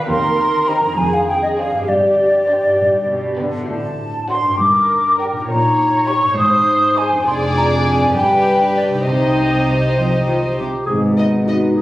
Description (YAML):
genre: cinematic, playful, whimsical film cue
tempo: 67 BPM (dotted quarters)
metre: 6/8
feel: straight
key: C minor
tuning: A4 = 440 Hz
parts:
  - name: warm studio violin section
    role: melody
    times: 0.0-11.6 s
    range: Bb4 to D#5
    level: -25 LUFS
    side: left 1 dB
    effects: none
  - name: mellow hollow concert flute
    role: second line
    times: 0.0-10.6 s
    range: C5 to Eb6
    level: -16 LUFS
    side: equal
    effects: none
  - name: dark studio viola section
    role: accompaniment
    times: 0.0-11.6 s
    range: B3 to Eb5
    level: -23 LUFS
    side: right 1 dB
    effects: none
  - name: concert harp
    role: arpeggios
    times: 0.0-11.8 s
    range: F2 to D#5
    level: -24 LUFS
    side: left 2 dB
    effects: none
  - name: dark studio double bass section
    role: bass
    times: 0.1-11.8 s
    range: F1 to Eb2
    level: -25 LUFS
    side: right 1 dB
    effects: none
  - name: warm studio cello section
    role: bass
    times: 0.1-11.8 s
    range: Eb2 to F3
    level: -23 LUFS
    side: right 1 dB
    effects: none
  - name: warm studio violin section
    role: second line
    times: 0.7-11.6 s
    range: D4 to D#5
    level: -25 LUFS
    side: left 1 dB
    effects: none
  - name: mellow clarinet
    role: second line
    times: 10.0-11.8 s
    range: Eb4 to G#4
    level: -23 LUFS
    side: equal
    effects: none
  - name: clear French horn section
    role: sustained chords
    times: 10.9-11.8 s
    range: B3 to D#4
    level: -22 LUFS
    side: left 1 dB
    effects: none
  - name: mellow tuba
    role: bass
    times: 10.9-11.8 s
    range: G#1 to D#2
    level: -23 LUFS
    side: equal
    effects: none
room: wet scoring stage reverb, RT60 1.6 s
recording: recorded on a phone in the room, club reverb, compression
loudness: -14 LUFS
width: side -16 dB against mid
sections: 0.0-10.9 A section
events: none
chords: 0.1 Cm/Eb; 1.0 Dm7b5/F; 1.9 Gsus4; 2.8 G; 3.7 D7/A; 4.6 Gm; 5.5 Eb7/Bb; 6.4 Ab; 7.3 Dm7b5/F; 8.2 G; 9.1 Cm; 10.9 G#m